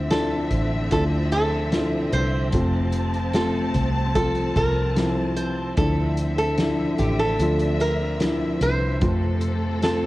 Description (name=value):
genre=pop ballad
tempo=74 BPM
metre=4/4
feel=straight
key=unclear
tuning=A4 = 441 Hz
part: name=flamenco guitar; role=melody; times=0.0-10.1 s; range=G4 to D5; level=-26 LUFS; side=right 1 dB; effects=none
part: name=felt-muted upright piano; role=accompaniment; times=0.0-10.1 s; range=D3 to F4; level=-26 LUFS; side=left 1 dB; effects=cassette tape
part: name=warm symphonic string section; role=sustained chords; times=0.0-10.1 s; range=C3 to A5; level=-30 LUFS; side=equal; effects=cassette tape
part: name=vintage muted fingered electric bass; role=bass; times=0.0-10.1 s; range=F1 to F2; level=-25 LUFS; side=equal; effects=none
part: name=soft-mallet drum kit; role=drums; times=0.1-10.0 s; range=hi-hat, kick drum, snare drum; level=-28 LUFS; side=equal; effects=none
room=light reverb, studio reverb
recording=home recording on cassette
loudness=-20 LUFS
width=side -17 dB against mid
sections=0.0-10.1 A section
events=none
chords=0.0 Dmadd9; 2.5 F; 5.8 Dmadd9; 9.0 F